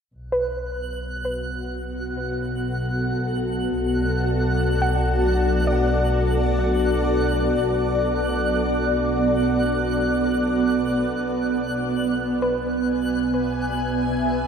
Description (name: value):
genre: ambient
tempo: free time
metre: none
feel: none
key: B dorian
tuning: A4 = 442 Hz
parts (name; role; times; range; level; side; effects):
- granular cloud pad; sustained chords; 1.3-14.5 s; B3 to G#5; -22 LUFS; equal; built-in reverb
- dark studio double bass section; bass; 0.1-14.5 s; B1; -27 LUFS; equal; none
- twinkling granular texture; texture; 0.4-14.5 s; F#6; -32 LUFS; right 3 dB; built-in reverb
- soft round pluck; arpeggios; 0.3-14.5 s; B4 to F#5; -29 LUFS; right 1 dB; chorus, analog delay
room: wet plate reverb, RT60 3.1 s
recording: echo-heavy mix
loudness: -20 LUFS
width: side -6 dB against mid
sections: 0.1-14.5 A section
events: fade-out on double bass section 0.1-14.5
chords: 0.1 Bm7; 11.2 E/B